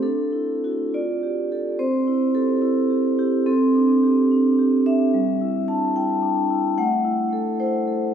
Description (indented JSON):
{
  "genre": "classical, contemporary piece for solo vibraphone",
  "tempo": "72 BPM (dotted quarters)",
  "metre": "6/8",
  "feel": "rubato",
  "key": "A minor",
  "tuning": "A4 = 442 Hz",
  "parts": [
    { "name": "vibraphone with medium mallets", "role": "solo", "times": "0.0-8.1 s", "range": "G3 to A5", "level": "-18 LUFS", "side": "right 1 dB", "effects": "none" }
  ],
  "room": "wet cathedral reverb, RT60 5.3 s",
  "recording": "heard from further back in the room",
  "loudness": "-18 LUFS",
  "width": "side -8 dB against mid",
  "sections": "0.0-8.1 A section",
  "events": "none",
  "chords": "0.0 Dadd9; 0.9 F69; 1.8 C; 3.5 Am7/C; 5.1 G5; 6.8 Am6",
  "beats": "| 0.03 0.94 | 1.79 2.63 | 3.47 4.31 | 5.14 5.96 | 6.78 7.60"
}